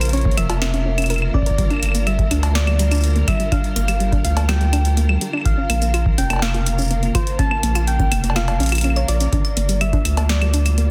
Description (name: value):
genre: IDM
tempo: 124 BPM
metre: 4/4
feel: straight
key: G dorian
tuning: A4 = 435 Hz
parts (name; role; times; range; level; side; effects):
- soft struck synth lead; melody; 0.0-10.9 s; C5 to A5; -29 LUFS; equal; chorus, digital delay
- soft string machine; sustained chords; 0.0-10.9 s; Db3 to Bb4; -32 LUFS; equal; ensemble chorus
- round analog bass; bass; 0.0-10.9 s; F1 to D2; -21 LUFS; equal; none
- booming analog drum machine; drums; 0.0-10.9 s; claves, cowbell, hi-hat, shaker, snare drum; -27 LUFS; equal; none
- soft round pluck; arpeggios; 0.1-10.9 s; F3 to Db5; -29 LUFS; equal; chorus, digital delay
- electronic kick drum; drums; 0.3-10.0 s; none; -22 LUFS; equal; none
room: little or no reverb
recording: dense, heavily limited modern master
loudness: -18 LUFS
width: mono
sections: 0.0-10.9 A section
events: kick drops out 8.8-9.3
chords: 0.0 Bbm; 1.6 Gm7; 5.5 Bbm; 9.3 Gm7